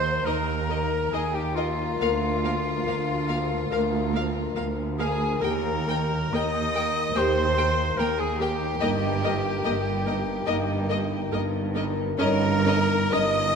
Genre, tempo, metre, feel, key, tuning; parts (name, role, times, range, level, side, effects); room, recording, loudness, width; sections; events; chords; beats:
classical, slow romantic movement for symphony orchestra; 71 BPM; 4/4; uneven beats, rubato; Eb major; A4 = 441 Hz
bright clarinet; second line; 0.0-13.6 s; F4 to Eb5; -30 LUFS; equal
rich chamber violin section; second line; 0.0-13.6 s; F4 to Eb5; -33 LUFS; equal
silver concert flute; second line; 0.0-13.6 s; F5 to Eb6; -32 LUFS; left 1 dB
concert harp; arpeggios; 0.0-13.6 s; G2 to Bb5; -32 LUFS; left 9 dB
rich chamber cello section; bass; 0.0-13.6 s; D2 to G2; -30 LUFS; right 3 dB
warm chamber double bass section; bass; 0.0-13.6 s; G1 to Eb2; -30 LUFS; right 4 dB
rich chamber violin section; melody; 0.3-13.2 s; Eb5 to G5; -34 LUFS; left 4 dB
warm symphonic viola section; accompaniment; 0.3-13.2 s; Bb3 to Bb4; -34 LUFS; right 2 dB
dark French horn section; sustained chords; 0.3-12.6 s; Bb3 to Bb4; -31 LUFS; left 2 dB
wet scoring stage reverb, RT60 1.8 s; minimal, uncompressed stereo recording; -23 LUFS; side -6 dB against mid
0.0-13.6 A section
0.0 Eb; 2.0 Bb/D; 5.4 Eb; 8.8 Eb/G; 12.2 Eb7/G
0.27 1.14 | 2.01 2.87 3.71 4.56 | 5.42 6.33 7.16 7.98 | 8.82 9.65 10.47 11.32 | 12.20 13.13